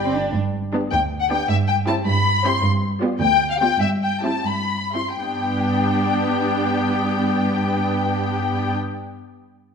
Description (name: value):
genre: quick classical-period movement for string orchestra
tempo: 80-106 BPM (dotted quarters)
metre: 6/8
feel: rubato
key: G major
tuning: A4 = 443 Hz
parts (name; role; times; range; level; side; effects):
- warm symphonic violin section; melody; 0.0-8.7 s; E5 to C6; -22 LUFS; left 5 dB; none
- warm symphonic violin section; second line; 0.0-8.7 s; G4 to G5; -29 LUFS; left 4 dB; none
- rich symphonic cello section; bass; 0.0-8.7 s; D2 to D4; -23 LUFS; right 2 dB; none
- rich symphonic viola section; accompaniment; 0.7-8.7 s; B3 to F4; -24 LUFS; right 1 dB; none
room: wet scoring stage reverb, RT60 1.5 s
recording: none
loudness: -18 LUFS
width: side -6 dB against mid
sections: 0.4-5.2 A section; 5.2-8.0 B section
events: slowing down 2.1-5.2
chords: 0.4 G; 1.5 C/G; 2.6 G7; 3.8 C/G; 5.2 G